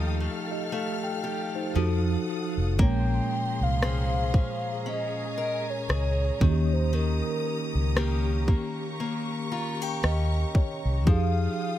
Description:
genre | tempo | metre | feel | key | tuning
contemporary R&B | 58 BPM | 4/4 | swing 58% on 16ths | Bb dorian | A4 = 440 Hz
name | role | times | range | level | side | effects
mellow tine electric piano | accompaniment | 0.0-11.8 s | Bb2 to Bb5 | -31 LUFS | right 1 dB | medium stereo tremolo
warm studio string section | sustained chords | 0.0-11.8 s | Db4 to F6 | -37 LUFS | left 1 dB | sidechain pumping
picked acoustic archtop guitar | arpeggios | 0.0-11.8 s | Eb3 to C5 | -34 LUFS | left 4 dB | ping-pong delay
vintage muted fingered electric bass | bass | 0.0-11.5 s | F1 to F2 | -26 LUFS | equal | none
mellow horn-like synth lead | melody | 2.8-11.8 s | Bb4 to G5 | -32 LUFS | equal | chorus, ping-pong delay
trap drum kit | drums | 2.8-11.3 s | kick drum, rim click | -22 LUFS | equal | none
room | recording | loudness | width
little or no reverb | none | -24 LUFS | side -12 dB against mid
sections
0.0-11.8 A section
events
tine electric piano fill 9.0-11.1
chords
0.0 F9; 1.8 F7b9; 2.8 Bbm9; 6.4 Eb7; 11.1 Fm9

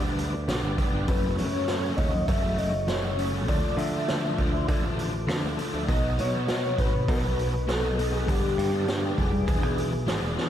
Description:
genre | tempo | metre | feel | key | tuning
psychedelic rock | 100 BPM | 4/4 | straight | unclear | A4 = 440 Hz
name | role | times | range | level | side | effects
mellow tonewheel organ | sustained chords | 0.0-10.5 s | F4 to D6 | -38 LUFS | equal | slow rotary speaker
overdriven semi-hollow guitar | riff | 0.0-10.5 s | F#2 to G#4 | -29 LUFS | equal | rotary speaker
modern bright picked electric bass | bass | 0.0-10.4 s | E1 to D3 | -30 LUFS | equal | none
raw garage drum kit | drums | 0.2-10.5 s | hi-hat, kick drum, snare drum | -29 LUFS | equal | none
pulse-width lead | melody | 1.1-10.4 s | G4 to E5 | -31 LUFS | left 2 dB | chorus, analog delay
room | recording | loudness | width
moderate lush hall reverb, RT60 1.6 s, studio reverb | dreamy mix soaked in reverb | -24 LUFS | side -10 dB against mid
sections
0.0-10.5 A section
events
none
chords
0.0 G; 1.1 F#m; 3.5 Dmadd9; 5.9 Badd9; 8.3 G; 9.5 E7

